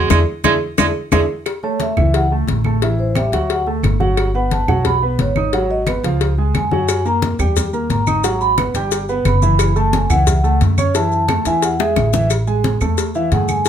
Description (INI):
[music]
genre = Afro-Cuban jazz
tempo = 177 BPM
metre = 4/4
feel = straight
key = unclear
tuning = A4 = 442 Hz
[part]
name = warm baritone saxophone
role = second line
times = 0.0-1.2 s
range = G#3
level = -18 LUFS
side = right 8 dB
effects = none
[part]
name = warm concert grand piano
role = accompaniment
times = 0.0-13.7 s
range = E3 to D#6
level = -20 LUFS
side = right 2 dB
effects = none
[part]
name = upright bass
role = bass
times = 0.0-13.7 s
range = F#1 to G2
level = -18 LUFS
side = equal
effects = none
[part]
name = bongos and cowbell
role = percussion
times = 0.1-13.7 s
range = none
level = -23 LUFS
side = left 7 dB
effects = none
[part]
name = claves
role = percussion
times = 0.1-13.7 s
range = none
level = -29 LUFS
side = right 8 dB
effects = none
[part]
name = congas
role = percussion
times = 0.1-13.7 s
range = none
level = -22 LUFS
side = left 2 dB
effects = none
[part]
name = maracas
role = percussion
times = 0.1-1.2, 6.9-13.7 s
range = none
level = -29 LUFS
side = left 7 dB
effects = none
[part]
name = vibraphone with soft mallets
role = melody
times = 1.6-13.7 s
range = B#4 to B5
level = -20 LUFS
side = right 1 dB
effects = none
[sound]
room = light reverb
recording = none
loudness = -14 LUFS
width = side -9 dB against mid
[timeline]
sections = 0.0-1.5 A section; 1.5-12.3 A section; 12.3-13.7 A section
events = baritone saxophone solo 0.0-1.5; band accent 0.1-1.5; drum fill 1.0-1.5, 11.8-12.3; vibraphone solo 1.5-13.7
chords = 0.1 E7; 1.5 A; 2.8 A5; 3.5 D; 4.2 Gmaj9; 5.5 G#m7; 6.2 C#; 6.9 F#; 7.6 D#; 8.2 G#m7; 8.9 G; 9.6 F#m7; 11.6 E; 12.3 A5